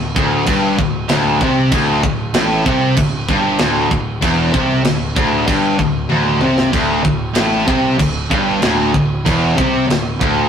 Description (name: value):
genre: heavy metal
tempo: 96 BPM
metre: 4/4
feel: straight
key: unclear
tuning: A4 = 439 Hz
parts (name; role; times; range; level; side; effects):
- distorted electric guitar; riff; 0.0-10.5 s; D2 to C3; -18 LUFS; left 5 dB; overdrive
- distorted electric guitar; riff; 0.0-10.5 s; D2 to C3; -19 LUFS; right 4 dB; distortion
- high-gain distorted guitar; riff; 0.0-10.5 s; D2 to C3; -22 LUFS; right 1 dB; distortion
- fuzz picked electric bass; bass; 0.0-10.5 s; D1 to C2; -23 LUFS; equal; overdrive
- tight metal drum kit; drums; 0.2-10.4 s; crash cymbal, kick drum, snare drum, toms; -19 LUFS; right 1 dB; none
room: moderate stone room reverb, RT60 1.1 s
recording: rough rehearsal-room recording, warm saturation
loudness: -13 LUFS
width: side -8 dB against mid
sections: 0.0-10.5 A section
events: drum fill 6.1-6.7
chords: 0.0 D5